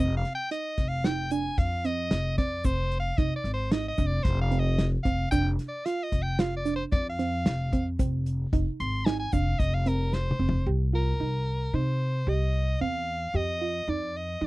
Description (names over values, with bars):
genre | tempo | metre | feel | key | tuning
progressive instrumental, band music in an uneven meter | 112 BPM | 5/4 | straight | F dorian | A4 = 440 Hz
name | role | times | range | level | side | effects
edgy soprano saxophone | melody | 0.0-14.5 s | Bb4 to C6 | -32 LUFS | equal | none
soft round pluck | arpeggios | 0.0-14.5 s | C4 to G4 | -32 LUFS | right 4 dB | chorus
upright bass | bass | 0.0-14.5 s | F1 to F3 | -28 LUFS | equal | none
warm soul drum kit | drums | 0.2-10.6 s | hi-hat, kick drum, snare drum, toms | -28 LUFS | equal | none
tube shaker | percussion | 1.0-10.3 s | none | -51 LUFS | left 10 dB | none
room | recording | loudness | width
little or no reverb | dry, close 1970s-style studio recording | -25 LUFS | side -19 dB against mid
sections
0.0-10.7 A section; 10.7-14.5 B section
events
soprano saxophone solo 0.0-10.7; drum fill 10.1-10.7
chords
0.0 F7(no3); 2.6 Fm7; 5.3 Ebmaj7sus2/F (rootless); 8.0 Fm7; 10.7 Cm; 13.3 F5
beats
0.51 1.05 1.58 2.12 | 2.65 3.18 3.72 4.25 4.78 | 5.32 5.85 6.39 6.92 7.45 | 7.99 8.52 9.06 9.59 10.13 | 10.66 11.20 11.73 12.27 12.80 | 13.34 13.88 14.41